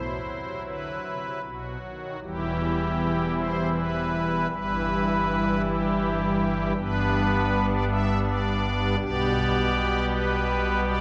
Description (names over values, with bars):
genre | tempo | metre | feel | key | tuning
classical, chorale-style piece for pipe organ | 80 BPM | 3/4 | rubato | E minor | A4 = 439 Hz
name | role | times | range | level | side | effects
pipe organ, strings celeste | solo | 0.0-11.0 s | E1 to E5 | -26 LUFS | equal | none
room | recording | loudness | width
wet church reverb, RT60 2.9 s | recorded in a church or concert hall | -26 LUFS | mono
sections
0.0-2.2 A section; 2.2-11.0 B section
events
none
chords
0.0 Bsus4; 1.4 B; 2.2 Em; 4.5 Em/G; 6.8 G; 9.0 G/B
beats
0.65 1.44 | 2.22 2.99 3.75 | 4.51 5.27 6.03 | 6.77 7.51 8.25 | 9.00 9.73 10.47